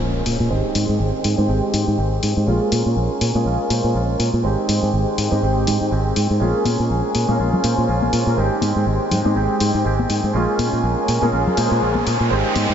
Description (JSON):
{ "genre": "filtered disco house", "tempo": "122 BPM", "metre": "4/4", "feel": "swing 57% on 16ths", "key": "Bb dorian", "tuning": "A4 = 441 Hz", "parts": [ { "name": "clear baby grand piano", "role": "accompaniment", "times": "0.0-12.7 s", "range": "Ab3 to C5", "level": "-22 LUFS", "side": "right 1 dB", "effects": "phaser, low-pass filter" }, { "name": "dark studio violin section", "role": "sustained chords", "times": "0.0-12.7 s", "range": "Ab3 to Ab5", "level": "-26 LUFS", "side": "right 1 dB", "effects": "vintage 12-bit sampler grit, low-pass filter" }, { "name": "twangy electric guitar", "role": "riff", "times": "0.0-12.7 s", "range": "Eb3 to G4", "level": "-31 LUFS", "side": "right 2 dB", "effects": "low-pass filter" }, { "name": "fingered electric bass", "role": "bass", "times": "0.0-12.7 s", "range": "Ab1 to Bb2", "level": "-20 LUFS", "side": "equal", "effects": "low-pass filter" }, { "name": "impact and riser", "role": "sound effects", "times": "0.0-0.5, 11.0-12.7 s", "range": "none", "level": "-30 LUFS", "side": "equal", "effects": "none" }, { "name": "electronic hi-hat", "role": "drums", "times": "0.3-12.7 s", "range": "none", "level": "-29 LUFS", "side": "left 4 dB", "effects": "none" }, { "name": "tambourine and congas", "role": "percussion", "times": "6.4-12.7 s", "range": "none", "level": "-27 LUFS", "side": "left 3 dB", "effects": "none" }, { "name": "dark horn section", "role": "melody", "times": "7.3-12.1 s", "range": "Ab3 to Bb4", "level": "-30 LUFS", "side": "left 1 dB", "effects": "vintage 12-bit sampler grit, low-pass filter, tape echo" } ], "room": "moderate huge ambient reverb, RT60 7.1 s", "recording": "dreamy mix soaked in reverb, nothing above 7.8 kHz", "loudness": "-16 LUFS", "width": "side -8 dB against mid", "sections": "0.0-12.7 A section", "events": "impact 0.0-0.5; filter sweep 0.0-12.7; riser 11.0-12.7", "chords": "0.0 Bbm7; 0.5 Abmaj7; 2.5 Bbm7; 4.4 Abmaj7; 6.4 Bbm7; 8.4 Abmaj7; 10.3 Bbm7" }